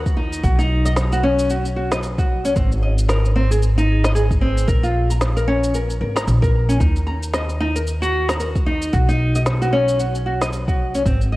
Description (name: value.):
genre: organic downtempo.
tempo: 113 BPM.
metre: 4/4.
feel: swing 58% on 16ths.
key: unclear.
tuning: A4 = 440 Hz.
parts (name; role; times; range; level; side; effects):
upright bass; bass; 0.0-11.4 s; Ab1 to Eb2; -19 LUFS; equal; sidechain pumping.
electronic cabasa and snare drum; drums; 0.1-11.3 s; none; -26 LUFS; equal; overdrive.
electronic kick drum; drums; 0.1-11.2 s; none; -20 LUFS; equal; none.
flamenco guitar; arpeggios; 0.2-11.4 s; C4 to Bb5; -21 LUFS; equal; tape echo.
room: studio ambience.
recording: worn, warbling old tape, cassette tape, warbly pitch drift.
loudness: -16 LUFS.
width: side -18 dB against mid.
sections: 0.0-11.4 A section.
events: none.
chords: 0.4 Badd9; 2.6 Abadd9; 4.7 Bbm; 6.8 Eb5; 8.9 Badd9.